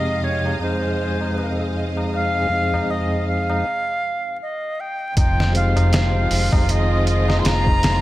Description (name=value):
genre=trip hop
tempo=79 BPM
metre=4/4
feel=swing 58% on 16ths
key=F minor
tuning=A4 = 440 Hz
part: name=bright reedy wooden flute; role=melody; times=0.0-8.0 s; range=C5 to C6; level=-23 LUFS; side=equal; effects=tape echo
part: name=tonewheel organ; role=accompaniment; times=0.0-8.0 s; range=F2 to Ab4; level=-24 LUFS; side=equal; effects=slow rotary speaker, tremolo
part: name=rich studio string section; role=sustained chords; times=0.0-8.0 s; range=C3 to F5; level=-28 LUFS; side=right 1 dB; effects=none
part: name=tabla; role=percussion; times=0.1-7.8 s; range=none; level=-31 LUFS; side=left 1 dB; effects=none
part: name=deep dub fingered electric bass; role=bass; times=5.2-8.0 s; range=F1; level=-19 LUFS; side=equal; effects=none
part: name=trip hop sampler-style drum kit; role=drums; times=5.2-8.0 s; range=hi-hat, kick drum, snare drum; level=-20 LUFS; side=equal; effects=studio reverb
room=light reverb, studio ambience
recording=vinyl crackle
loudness=-18 LUFS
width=side -16 dB against mid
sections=0.0-5.2 A section; 5.2-8.0 B section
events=break 3.7-5.2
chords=0.0 Fm7